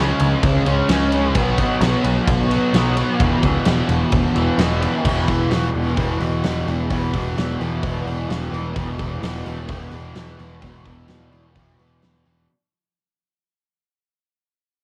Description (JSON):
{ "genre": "rock, shoegaze and dream pop", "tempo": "129 BPM", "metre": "4/4", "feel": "straight", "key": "E major", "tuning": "A4 = 440 Hz", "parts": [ { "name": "fuzz guitar", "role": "riff", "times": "0.0-12.5 s", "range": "E2 to C#4", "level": "-23 LUFS", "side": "equal", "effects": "distortion, lush chorus, cassette tape" }, { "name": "overdriven picked electric bass", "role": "bass", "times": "0.0-12.5 s", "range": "E1 to C#2", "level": "-25 LUFS", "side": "equal", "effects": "none" }, { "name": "huge arena drum kit", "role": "drums", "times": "0.2-12.4 s", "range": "crash cymbal, hi-hat, kick drum, ride cymbal, snare drum", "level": "-26 LUFS", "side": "equal", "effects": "none" } ], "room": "studio ambience", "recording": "home recording on cassette", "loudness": "-20 LUFS", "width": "mono", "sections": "0.0-5.0 A section; 5.0-12.5 B section", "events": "fade-out 5.0-12.5", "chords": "0.0 C#5; 1.4 B5; 3.2 E5", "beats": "0.43 0.89 | 1.35 1.81 2.28 2.74 | 3.20 3.66 4.12 4.58 | 5.05 5.51 5.97 6.44 | 6.90 7.37 7.83 8.30 | 8.76 9.23 9.69 10.16 | 10.62 11.09 11.56 12.02" }